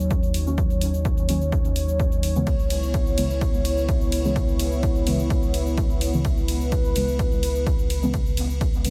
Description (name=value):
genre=dub techno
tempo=127 BPM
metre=4/4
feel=straight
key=unclear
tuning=A4 = 439 Hz
part: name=dark analog pad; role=sustained chords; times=0.0-8.9 s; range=Gb3 to Db5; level=-30 LUFS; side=equal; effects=chorus, sidechain pumping
part: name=warm sub bass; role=bass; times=0.0-8.9 s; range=Db2 to Eb2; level=-28 LUFS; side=equal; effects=sidechain pumping
part: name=deep house drum kit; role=drums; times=0.0-8.9 s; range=cabasa, hi-hat, ride cymbal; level=-36 LUFS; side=equal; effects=none
part: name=electronic kick drum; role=drums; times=0.1-8.7 s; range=none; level=-26 LUFS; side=equal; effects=none
part: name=deep mellow chord stab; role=stabs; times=0.5-8.9 s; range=Db3 to Db4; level=-32 LUFS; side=equal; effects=chorus, phaser, sidechain pumping, dub echo
room=little or no reverb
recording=none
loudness=-23 LUFS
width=mono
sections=0.0-8.9 A section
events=filter sweep on synth stab 0.0-8.9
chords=0.0 Ebm7; 2.5 Dbm7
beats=0.11 | 0.58 1.05 1.52 2.00 | 2.47 2.94 3.41 3.89 | 4.36 4.83 5.30 5.78 | 6.25 6.72 7.19 7.67 | 8.14 8.61